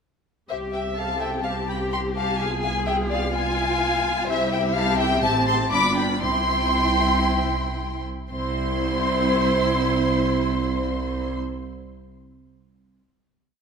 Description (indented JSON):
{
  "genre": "quick classical-period movement for string orchestra",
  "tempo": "113-128 BPM",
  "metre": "4/4",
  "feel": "straight",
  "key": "C major",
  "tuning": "A4 = 439 Hz",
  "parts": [
    { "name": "warm symphonic violin section", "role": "melody", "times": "0.5-11.3 s", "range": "E5 to D6", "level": "-25 LUFS", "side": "left 2 dB", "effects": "none" },
    { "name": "warm chamber violin section", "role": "second line", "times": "0.5-11.3 s", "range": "C5 to B5", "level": "-27 LUFS", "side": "left 2 dB", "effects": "none" },
    { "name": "warm chamber viola section", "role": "accompaniment", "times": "0.5-11.3 s", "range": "B3 to G4", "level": "-28 LUFS", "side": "right 2 dB", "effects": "none" },
    { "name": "rich studio double bass section", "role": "bass", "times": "0.5-11.3 s", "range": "G1 to C2", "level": "-28 LUFS", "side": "right 2 dB", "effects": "none" },
    { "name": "warm studio cello section", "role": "bass", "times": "0.5-11.3 s", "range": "C2 to A4", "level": "-29 LUFS", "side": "right 2 dB", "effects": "none" }
  ],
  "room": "moderate scoring stage reverb, RT60 2.0 s",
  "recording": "none",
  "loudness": "-20 LUFS",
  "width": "side -6 dB against mid",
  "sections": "0.5-8.3 A section; 8.3-12.4 final chord",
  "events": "slowing down 3.3-8.3",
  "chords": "0.5 C5; 2.4 E(b9b13)/C (rootless); 4.3 C; 5.2 Am7; 5.7 G7; 6.2 C",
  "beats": "| 0.50 0.98 1.45 1.93 | 2.40 2.87 3.34 3.81 | 4.28 4.75 5.23 5.72 | 6.22 6.74 7.26 7.78 | 8.31 8.82 9.34 9.86 | 10.38 10.90"
}